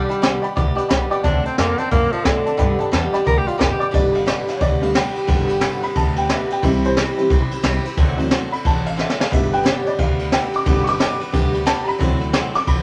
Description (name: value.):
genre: rockabilly.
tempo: 178 BPM.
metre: 4/4.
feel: swing 62% on 8ths.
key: G major.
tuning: A4 = 440 Hz.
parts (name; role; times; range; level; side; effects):
bright tenor saxophone; melody; 0.0-3.9 s; D3 to Bb4; -24 LUFS; equal; none.
picked swing-style acoustic guitar; accompaniment; 0.0-12.8 s; G2 to A4; -27 LUFS; equal; none.
upright bass; bass; 0.0-12.8 s; F#1 to A2; -27 LUFS; equal; none.
warm upright piano; accompaniment; 0.1-12.8 s; D3 to D6; -25 LUFS; equal; none.
jazz brush drum kit; drums; 0.1-12.8 s; hi-hat, kick drum, ride cymbal, snare drum; -22 LUFS; equal; none.
room: wet small room reverb, RT60 0.5 s.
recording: none.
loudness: -19 LUFS.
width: mono.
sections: 0.0-3.9 A section; 3.9-12.8 B section.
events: upright piano solo 3.9-12.8; drum fill 9.0-9.3.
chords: 0.0 G; 1.2 D7; 2.6 G; 6.6 C; 8.0 D7; 9.3 G; 12.0 D7.